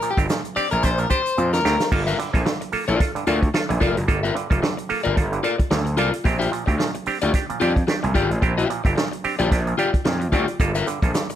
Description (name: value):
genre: funk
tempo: 111 BPM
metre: 4/4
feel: swing 56% on 16ths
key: G dorian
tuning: A4 = 440 Hz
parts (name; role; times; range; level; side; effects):
- electric guitar at the edge of break-up; accompaniment; 0.0-11.3 s; F4 to E5; -24 LUFS; left 5 dB; none
- auto-wah clav; stabs; 0.0-11.3 s; G2 to A4; -26 LUFS; right 5 dB; none
- vintage drum kit; drums; 0.0-11.4 s; crash cymbal, hi-hat, kick drum, snare drum; -23 LUFS; equal; none
- egg shaker; percussion; 0.0-1.9, 10.6-11.4 s; none; -39 LUFS; left 4 dB; none
- gritty slap bass; bass; 0.2-11.1 s; F1 to F2; -24 LUFS; equal; overdrive
room: moderate club reverb, RT60 0.8 s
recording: none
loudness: -19 LUFS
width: side -11 dB against mid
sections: 0.0-1.9 A section; 1.9-11.4 B section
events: clean electric guitar solo 0.0-1.9; drum fill 1.4-1.9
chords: 0.0 Bb6; 1.9 Gm7; 6.3 Bb6; 10.6 Gm7